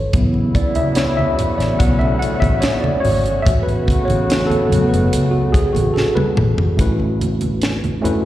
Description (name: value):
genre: lush 1970s-style soul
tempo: 72 BPM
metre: 4/4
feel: straight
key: A major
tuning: A4 = 435 Hz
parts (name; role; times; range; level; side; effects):
- tine electric piano; accompaniment; 0.0-8.3 s; C#3 to F#5; -19 LUFS; left 1 dB; overdrive, fast stereo tremolo, slapback echo
- vintage muted fingered electric bass; bass; 0.0-8.2 s; F#1 to C#2; -20 LUFS; equal; none
- soft string machine; sustained chords; 0.5-6.8 s; A3 to F#4; -28 LUFS; equal; ensemble chorus
- mellow trombone section; stabs; 0.1-6.3 s; C#3 to F#4; -24 LUFS; right 1 dB; tape echo, slapback echo
- tight funk drum kit; drums; 0.1-8.2 s; hi-hat, kick drum, snare drum, toms; -18 LUFS; equal; none
- congas; percussion; 0.1-8.2 s; none; -23 LUFS; right 2 dB; none
room: light reverb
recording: live gig heard through the venue's PA, recital hall reverb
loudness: -14 LUFS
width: side -14 dB against mid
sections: 0.0-6.8 A section; 6.8-8.3 B section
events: tine electric piano solo 0.0-6.8; drum fill 6.0-6.8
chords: 0.1 A69